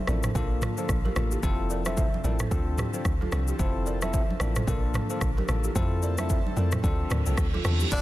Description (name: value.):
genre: afrobeats.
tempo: 111 BPM.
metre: 4/4.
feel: swing 58% on 16ths.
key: F major.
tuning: A4 = 440 Hz.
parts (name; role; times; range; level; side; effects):
airy breathy pad; sustained chords; 0.0-7.9 s; C3 to A4; -38 LUFS; equal; chorus, sidechain pumping.
bell-like tine electric piano; accompaniment; 0.1-8.0 s; Bb3 to A4; -34 LUFS; left 5 dB; none.
balafon; riff; 0.1-8.0 s; E4 to E5; -36 LUFS; right 5 dB; tape echo.
deep log drum bass; bass; 0.1-8.0 s; F1 to F2; -28 LUFS; equal; none.
afro-pop drum kit; drums; 0.1-8.0 s; crash cymbal, kick drum, rim click, shaker, toms; -28 LUFS; equal; soft clipping on snare.
congas; percussion; 0.1-7.9 s; none; -37 LUFS; right 1 dB; none.
reverse cymbal and downlifter; sound effects; 7.1-8.0 s; none; -35 LUFS; right 5 dB; none.
breathy tenor saxophone; melody; 7.9-8.0 s; D4; -28 LUFS; equal; none.
room: little or no reverb.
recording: dense, heavily limited modern master.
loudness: -24 LUFS.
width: side -16 dB against mid.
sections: 0.0-7.9 A section.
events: reverse cymbal 7.1-7.9.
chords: 0.4 Bbmaj7; 1.4 Fmaj7; 2.5 Dm7; 3.6 Fmaj7; 4.7 Bbmaj7; 5.8 Fmaj7; 6.8 Dm7.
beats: 0.35 0.89 | 1.43 1.97 2.51 3.05 | 3.60 4.13 4.68 5.22 | 5.76 6.30 6.84 7.38 | 7.92.